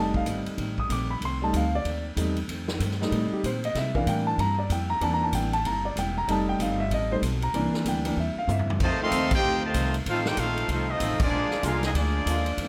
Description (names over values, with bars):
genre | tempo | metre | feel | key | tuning
jazz, big band swing | 190 BPM | 4/4 | swing 62% on 8ths | F mixolydian, F major from 8.8 s | A4 = 440 Hz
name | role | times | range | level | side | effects
vintage hollow-body jazz guitar | accompaniment | 0.0-12.7 s | F2 to A4 | -38 LUFS | equal | none
warm grand piano | accompaniment | 0.0-8.7 s | E3 to Eb6 | -29 LUFS | equal | none
upright bass | bass | 0.0-12.7 s | Eb1 to C3 | -32 LUFS | equal | none
swinging big-band drum kit | drums | 0.1-12.7 s | crash cymbal, hi-hat, kick drum, ride cymbal, snare drum, toms | -35 LUFS | equal | none
clear trumpet section | melody | 8.8-12.7 s | Bb3 to C6 | -30 LUFS | equal | none
brilliant trombone section | second line | 8.8-12.7 s | C3 to G4 | -33 LUFS | equal | none
warm trombone section | sustained chords | 9.0-9.1, 11.6-12.6 s | D3 to F4 | -36 LUFS | equal | none
room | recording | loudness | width
moderate large studio reverb, RT60 0.8 s | none | -26 LUFS | mono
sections
0.0-8.8 A section; 8.8-12.7 B section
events
grand piano solo 0.0-8.8; drum fill 8.5-8.8; band accent 9.3, 11.2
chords
0.0 F7; 3.8 C7; 6.3 F7; 7.5 C7; 8.8 F7; 11.3 Bb7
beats
0.26 0.58 0.90 | 1.22 1.53 1.85 2.17 | 2.48 2.80 3.12 3.43 | 3.75 4.07 4.38 4.70 | 5.01 5.33 5.65 5.96 | 6.28 6.59 6.91 7.22 | 7.54 7.85 8.17 8.48 | 8.80 9.11 9.43 9.74 | 10.06 10.37 10.69 11.00 | 11.32 11.63 11.95 12.26 | 12.57